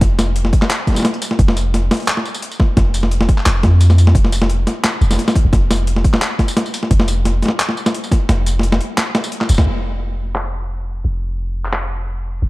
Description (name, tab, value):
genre	half-time drum and bass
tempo	174 BPM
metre	4/4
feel	half-time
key	unclear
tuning	A4 = 440 Hz
part	long sustained 808-style bass	bass	0.0-12.5 s	F1 to F2	-15 LUFS	equal	tube saturation
part	boom bap sampler-style drum kit	drums	0.0-11.8 s	handclaps, hi-hat, snare drum, tambourine	-18 LUFS	equal	overdrive, low-pass filter on snare, low-pass filter on hats, low-pass filter on perc, low-pass filter on room
part	electronic kick drum	drums	0.0-8.2 s	none	-14 LUFS	equal	overdrive
room	little or no reverb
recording	dark, warm production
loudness	-14 LUFS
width	side -20 dB against mid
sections	0.0-9.7 A section; 9.7-12.5 B section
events	drop 0.0-9.7; kick drops out 8.3-9.7; band accent 9.6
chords	none